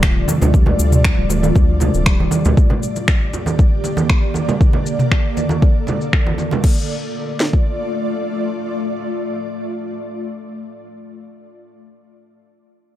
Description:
afro house; 118 BPM; 4/4; straight; D minor; A4 = 440 Hz
ethereal airy pad; sustained chords; 0.0-11.2 s; D3 to D5; -23 LUFS; equal; ensemble chorus, built-in reverb, tremolo, sidechain pumping
handpan; arpeggios; 0.0-2.6 s; A2 to A3; -24 LUFS; left 1 dB; sidechain pumping, tape echo
round analog bass; bass; 0.0-2.5 s; D1 to D2; -17 LUFS; equal; sidechain pumping
afro-pop drum kit; drums; 0.0-7.6 s; kick drum, snare drum; -14 LUFS; equal
afro-pop drum kit; drums; 0.0-6.7 s; crash cymbal, finger snaps, shaker, toms; -22 LUFS; equal; low-pass filter on snare, low-pass filter on hats, low-pass filter on perc, low-pass filter on toms, low-pass filter on cymbals
congas; percussion; 0.0-6.6 s; -21 LUFS; right 4 dB
little or no reverb; -14 LUFS; side -13 dB against mid
0.0-6.6 A section; 6.6-10.7 B section
0.0 Dm; 2.6 Gm/D; 6.6 Dm

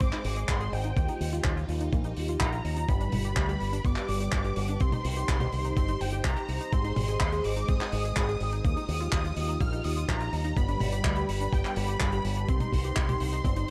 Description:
italo disco; 125 BPM; 4/4; straight; C minor; A4 = 437 Hz
unison lead; melody; 0.0-13.7 s; G5 to F6; -38 LUFS; equal; analog chorus, delay
string machine, full ensemble; sustained chords; 0.0-13.7 s; G3 to Eb5; -38 LUFS; equal; phaser, ensemble chorus
analog pluck; arpeggios; 0.0-13.7 s; Bb3 to Ab4; -42 LUFS; equal; chorus, delay
fingered electric bass with an envelope filter; bass; 0.0-13.6 s; G1 to Eb2; -33 LUFS; equal
damped 70s drum kit; drums; 0.0-13.7 s; handclaps, hi-hat, toms; -37 LUFS; equal
electronic kick drum; drums; 0.0-13.5 s; -31 LUFS; equal
light reverb, small room ambience; dark, warm production; -29 LUFS; mono
0.0-13.7 A section
0.0 Ab; 1.0 Ebadd9; 2.9 G; 4.8 Cm; 6.7 Ab; 8.6 Ebadd9; 10.6 G; 12.5 Cm

